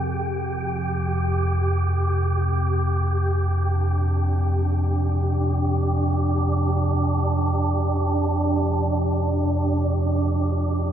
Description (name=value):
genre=dark ambient drone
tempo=free time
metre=none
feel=none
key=unclear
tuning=A4 = 440 Hz
part: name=gamelan-type bronze metallophone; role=arpeggios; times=0.0-4.0 s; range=Ab4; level=-46 LUFS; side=left 3 dB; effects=none
part: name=analog drone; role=drone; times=0.0-10.9 s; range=F2 to C3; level=-22 LUFS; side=equal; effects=lush chorus
part: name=wind-like tuned noise texture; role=texture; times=0.0-10.9 s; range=D4 to G5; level=-25 LUFS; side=right 1 dB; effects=built-in reverb
room=wet cathedral reverb, RT60 5.8 s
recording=none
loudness=-20 LUFS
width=side -10 dB against mid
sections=0.0-10.9 A section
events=filter sweep on synth drone 0.0-10.9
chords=0.0 Fmadd9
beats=free time